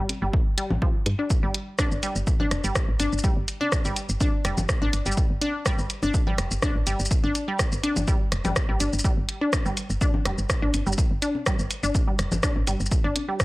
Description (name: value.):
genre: minimal techno.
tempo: 124 BPM.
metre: 4/4.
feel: straight.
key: unclear.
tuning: A4 = 440 Hz.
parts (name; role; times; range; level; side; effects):
resonant blip pluck; riff; 0.0-13.3 s; F3 to D4; -28 LUFS; left 1 dB; chorus, sidechain pumping, tape echo.
woody FM bass; bass; 0.0-13.1 s; F1 to G2; -28 LUFS; equal; sidechain pumping.
punchy analog drum machine; drums; 0.1-13.4 s; hi-hat, rim click, shaker; -28 LUFS; equal; none.
congas; percussion; 0.1-13.3 s; none; -33 LUFS; left 2 dB; analog delay.
electronic kick drum; drums; 0.3-13.4 s; none; -24 LUFS; equal; none.
room: digital ambience.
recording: dry, gritty hardware recording.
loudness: -22 LUFS.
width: side -20 dB against mid.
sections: 0.0-13.4 A section.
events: none.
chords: 0.0 G5.